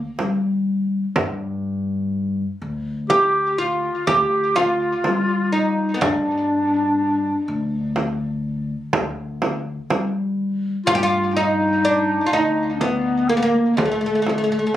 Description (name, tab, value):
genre	Arabic maqam ensemble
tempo	124 BPM (eighths)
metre	10/8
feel	straight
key	G maqam saba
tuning	A4 = 442 Hz
part	oud	melody	0.0-14.7 s	Ab3+50c to G4	-21 LUFS	right 1 dB	tape echo
part	mellow clarinet	second line	0.0-14.8 s	A3-46c to G4	-21 LUFS	left 1 dB	none
part	upright bass	bass	0.0-14.8 s	D2 to G3	-25 LUFS	left 2 dB	none
part	frame drum	percussion	0.2-14.8 s	none	-22 LUFS	right 3 dB	none
room	moderate studio reverb, RT60 0.5 s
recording	recorded on a phone in the room, studio reverb, compression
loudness	-18 LUFS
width	side -12 dB against mid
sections	0.0-14.8 A section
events	none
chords	none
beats	0.19 0.68 | 1.16 1.65 2.14 2.62 3.11 3.59 4.08 4.57 5.05 5.54 | 6.02 6.51 6.99 7.48 7.96 8.45 8.93 9.42 9.90 10.39 | 10.87 11.36 11.84 12.33 12.81 13.30 13.78 14.27 14.75